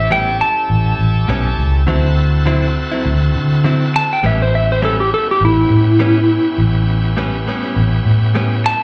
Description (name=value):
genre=blues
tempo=102 BPM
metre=4/4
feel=swing 56% on 16ths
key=A mixolydian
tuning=A4 = 435 Hz
part: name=clean lap steel guitar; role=melody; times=0.0-8.8 s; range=E4 to A5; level=-18 LUFS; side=equal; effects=slapback echo
part: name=bright tonewheel organ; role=accompaniment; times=0.0-8.8 s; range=B3 to A4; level=-27 LUFS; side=equal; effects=slow rotary speaker, overdrive, slapback echo
part: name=vintage muted fingered electric bass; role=bass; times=0.0-8.7 s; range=A1 to D3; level=-17 LUFS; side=equal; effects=none
part: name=direct-recorded clean electric guitar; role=stabs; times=0.1-8.5 s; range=A2 to E4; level=-23 LUFS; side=equal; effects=slapback echo
room=light reverb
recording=live gig heard through the venue's PA, club reverb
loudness=-15 LUFS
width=mono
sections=0.0-8.8 A section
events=electric slide guitar solo 0.0-8.8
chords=0.0 A9; 1.9 D9; 4.2 A9